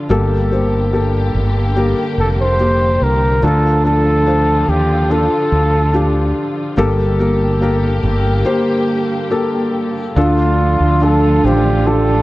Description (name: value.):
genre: pop ballad.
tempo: 72 BPM.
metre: 4/4.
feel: straight.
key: G minor.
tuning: A4 = 440 Hz.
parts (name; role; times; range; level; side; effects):
felt-muted upright piano; accompaniment; 0.0-12.2 s; G2 to C5; -18 LUFS; left 2 dB; none.
muted studio string section; sustained chords; 0.0-12.2 s; D3 to G4; -22 LUFS; equal; none.
mellow fretless electric bass; bass; 0.1-12.2 s; F1 to Eb2; -16 LUFS; equal; none.
breathy flugelhorn; melody; 2.2-12.2 s; F4 to C5; -17 LUFS; equal; none.
dark French horn section; second line; 10.2-12.2 s; D4; -20 LUFS; right 4 dB; none.
room: light reverb, small room ambience.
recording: worn, warbling old tape, cassette tape, warbly pitch drift.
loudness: -12 LUFS.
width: side -18 dB against mid.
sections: 0.0-10.2 A section; 10.2-12.2 B section.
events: break 8.5-10.2.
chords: 0.1 Gmadd9; 3.4 Dm; 6.8 Gmadd9; 10.2 Dm.